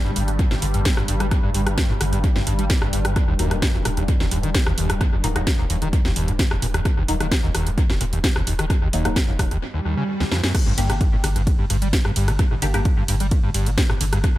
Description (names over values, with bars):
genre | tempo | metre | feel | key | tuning
driving peak-time techno | 130 BPM | 4/4 | straight | G harmonic minor | A4 = 440 Hz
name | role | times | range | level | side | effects
screaming distorted acid line | riff | 0.0-14.4 s | Eb2 to G3 | -25 LUFS | equal | distortion, analog chorus, sidechain pumping, tape echo
swarming drone | drone | 0.0-9.6 s | G2 to G3 | -30 LUFS | equal | built-in reverb, sidechain pumping
saturated sub bass | bass | 0.1-14.4 s | Eb1 to G1 | -25 LUFS | equal | overdrive, sidechain pumping, low-pass filter
techno drum kit | drums | 0.2-14.3 s | crash cymbal, hi-hat, ride cymbal, rim click, snare drum | -26 LUFS | equal | analog delay
electronic kick drum | drums | 0.4-14.3 s | none | -20 LUFS | equal | none
filtered dub chord stab | stabs | 3.4-12.9 s | Gb3 to G4 | -30 LUFS | left 2 dB | phaser, wide subtle chorus, sidechain pumping, tape echo
swell and impact | sound effects | 9.7-12.4 s | none | -30 LUFS | right 1 dB | none
room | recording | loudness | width
digital ambience | echo-heavy mix | -18 LUFS | side -16 dB against mid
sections
0.0-10.5 A section; 10.5-14.4 B section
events
swell 9.7-10.5; drum fill 10.2-10.5; drop 10.5-14.4; impact 10.5-12.4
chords
0.0 G5; 3.2 Ebm; 10.5 G5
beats
0.39 0.85 | 1.31 1.78 2.24 2.70 | 3.16 3.62 4.08 4.55 | 5.01 5.47 5.93 6.39 | 6.85 7.32 7.78 8.24 | 8.70 9.16 9.62 10.08 | 10.55 11.01 11.47 11.93 | 12.39 12.85 13.31 13.78 | 14.24